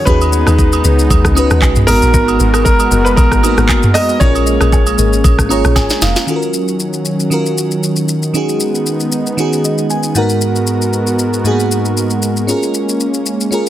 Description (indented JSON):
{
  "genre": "amapiano",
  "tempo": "116 BPM",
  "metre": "4/4",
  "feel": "swing 55% on 16ths",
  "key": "Eb minor",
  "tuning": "A4 = 440 Hz",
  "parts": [
    { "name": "clear grand piano", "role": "melody", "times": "0.0-6.0 s", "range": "Bb4 to Eb5", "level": "-18 LUFS", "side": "right 1 dB", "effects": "tape echo" },
    { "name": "crystalline FM electric piano", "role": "accompaniment", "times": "0.0-13.7 s", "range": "Ab2 to Bb5", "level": "-17 LUFS", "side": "equal", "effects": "chorus" },
    { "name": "warm analog pad", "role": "sustained chords", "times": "0.0-13.7 s", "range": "Eb3 to Bb4", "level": "-18 LUFS", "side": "right 1 dB", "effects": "chorus, sidechain pumping" },
    { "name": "marimba with medium mallets", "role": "stabs", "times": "0.1-5.1 s", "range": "Cb4 to B4", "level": "-20 LUFS", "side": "left 5 dB", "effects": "tape echo" },
    { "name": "deep log drum bass", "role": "bass", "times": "0.1-6.2 s", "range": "F1 to D#2", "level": "-14 LUFS", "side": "equal", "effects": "none" },
    { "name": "afro-pop drum kit", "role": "drums", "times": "0.1-13.7 s", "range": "handclaps, hi-hat, kick drum, rim click, shaker, snare drum, toms", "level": "-15 LUFS", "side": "equal", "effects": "none" },
    { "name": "agogo bells and woodblock", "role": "percussion", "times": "0.2-6.2 s", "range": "none", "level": "-23 LUFS", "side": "right 10 dB", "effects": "none" }
  ],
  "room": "light reverb",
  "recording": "dense, heavily limited modern master",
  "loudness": "-11 LUFS",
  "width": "side -13 dB against mid",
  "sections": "0.0-6.3 A section; 6.3-13.7 B section",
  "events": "drop 0.0-6.3; FM electric piano fill 5.2-6.3, 9.4-10.4, 13.5; drum fill 5.8-6.3",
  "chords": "0.1 B6; 1.9 Abm9; 4.2 Bbm7; 6.3 Ebm7; 8.3 B6/D#; 10.2 Abm9; 12.5 Bbm7"
}